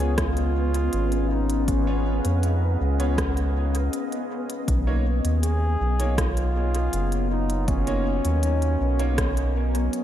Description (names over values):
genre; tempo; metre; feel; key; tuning
ambient dub; 80 BPM; 4/4; straight; Db mixolydian; A4 = 440 Hz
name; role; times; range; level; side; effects
warm trombone; melody; 0.0-9.9 s; Db4 to Ab4; -31 LUFS; right 1 dB; dub echo
deep dark ambient pad; sustained chords; 0.0-10.0 s; Gb3 to F5; -30 LUFS; left 2 dB; chorus, built-in reverb
clear upright piano; stabs; 0.0-9.1 s; Bb3 to Db5; -34 LUFS; right 2 dB; lush chorus, dub echo
soft dub sub bass; bass; 0.0-9.9 s; Gb1 to F2; -23 LUFS; equal; tube saturation
organic electronic drum kit; drums; 0.0-10.0 s; hi-hat, rim click; -33 LUFS; equal; overdrive, dub echo
wind-like tuned noise texture; texture; 0.0-10.0 s; Cb4; -34 LUFS; left 2 dB; built-in reverb
electronic kick drum; drums; 0.2-9.3 s; none; -28 LUFS; equal; overdrive
room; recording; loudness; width
light reverb; none; -21 LUFS; side -11 dB against mid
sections
0.0-10.0 A section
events
none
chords
0.0 Db7; 4.7 Cbmaj9